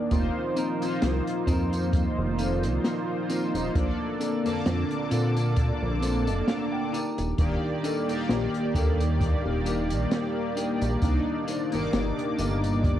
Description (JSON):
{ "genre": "vaporwave", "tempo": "66 BPM", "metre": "4/4", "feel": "swing 55% on 16ths", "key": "unclear", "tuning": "A4 = 441 Hz", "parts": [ { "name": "mellow synth brass", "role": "accompaniment", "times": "0.0-13.0 s", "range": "D3 to D6", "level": "-28 LUFS", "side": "equal", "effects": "wide subtle chorus, analog delay" }, { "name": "warbly tape-like pad", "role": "sustained chords", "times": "0.0-13.0 s", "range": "C3 to D5", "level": "-35 LUFS", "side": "right 1 dB", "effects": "chorus, built-in reverb" }, { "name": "chorused synth bass", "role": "bass", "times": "0.1-13.0 s", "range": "Eb1 to Bb2", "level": "-27 LUFS", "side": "equal", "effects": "none" }, { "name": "kick drum", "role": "drums", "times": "0.1-13.0 s", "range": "none", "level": "-26 LUFS", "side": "equal", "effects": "none" }, { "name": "open jazz drum kit", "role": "drums", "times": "0.1-13.0 s", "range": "hi-hat, snare drum, tambourine", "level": "-32 LUFS", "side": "equal", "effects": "none" }, { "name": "clean electric guitar", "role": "riff", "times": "0.6-12.6 s", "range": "C4 to Bb5", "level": "-34 LUFS", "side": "left 2 dB", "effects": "lush chorus, analog delay" } ], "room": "light reverb, small room ambience", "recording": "cassette tape", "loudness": "-24 LUFS", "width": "side -11 dB against mid", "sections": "0.1-13.0 A section", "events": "clean electric guitar fill 5.6-7.4", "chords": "0.1 F7sus4; 3.8 Bbmaj9; 6.9 Ebmaj7; 11.0 Cm9" }